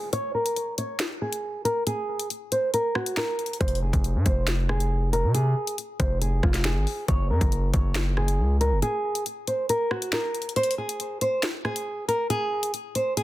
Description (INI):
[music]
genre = hip hop, drill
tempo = 138 BPM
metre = 4/4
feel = half-time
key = unclear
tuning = A4 = 440 Hz
[part]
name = nylon-string guitar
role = melody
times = 0.0-13.2 s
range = F4 to Db5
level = -27 LUFS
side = equal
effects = low-pass filter, ping-pong delay
[part]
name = drill drum kit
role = drums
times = 0.1-13.2 s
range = finger snaps, hi-hat, kick drum, rim click, snare drum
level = -27 LUFS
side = equal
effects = none
[part]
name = distorted 808-style bass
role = bass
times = 3.6-8.8 s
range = F1 to C3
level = -24 LUFS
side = equal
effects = distortion
[sound]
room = digital ambience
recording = dense, heavily limited modern master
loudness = -23 LUFS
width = side -16 dB against mid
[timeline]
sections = 0.0-13.2 A section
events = break 0.0-3.6, 8.8-10.6; filter sweep on nylon-string guitar 0.0-10.6; kick muted 1.9-3.6, 10.6-13.2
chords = 0.0 N.C.; 3.6 Fm; 7.1 Gbadd9; 10.6 N.C.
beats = | 0.13 0.56 1.00 1.43 | 1.87 2.30 2.74 3.17 | 3.61 4.04 4.48 4.91 | 5.34 5.78 6.21 6.65 | 7.08 7.52 7.95 8.39 | 8.82 9.26 9.69 10.13 | 10.56 11.00 11.43 11.87 | 12.30 12.74 13.17